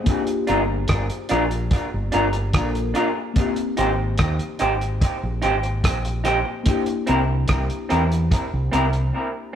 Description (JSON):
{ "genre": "lovers rock reggae", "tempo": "73 BPM", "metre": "4/4", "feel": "straight", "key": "unclear", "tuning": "A4 = 440 Hz", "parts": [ { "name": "mellow FM electric piano", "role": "accompaniment", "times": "0.0-9.6 s", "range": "Bb3 to C5", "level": "-28 LUFS", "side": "left 4 dB", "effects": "chorus, phaser" }, { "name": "cloth-damped thuddy drum kit", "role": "drums", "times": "0.1-9.1 s", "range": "hi-hat, kick drum, rim click", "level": "-23 LUFS", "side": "equal", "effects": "dub echo" }, { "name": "electric guitar through a small old amp", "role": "stabs", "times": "0.5-8.8 s", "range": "C4 to C5", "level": "-23 LUFS", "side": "right 1 dB", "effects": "dub echo" }, { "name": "deep dub fingered electric bass", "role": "bass", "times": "0.5-9.1 s", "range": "G1 to E2", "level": "-24 LUFS", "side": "equal", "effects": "none" } ], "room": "moderate stone room reverb, RT60 1.1 s", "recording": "rough rehearsal-room recording, tube saturation", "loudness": "-19 LUFS", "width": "side -9 dB against mid", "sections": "0.0-9.6 A section", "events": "break 9.1-9.6", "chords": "0.1 Gm7; 3.4 Abmaj7; 6.7 C7" }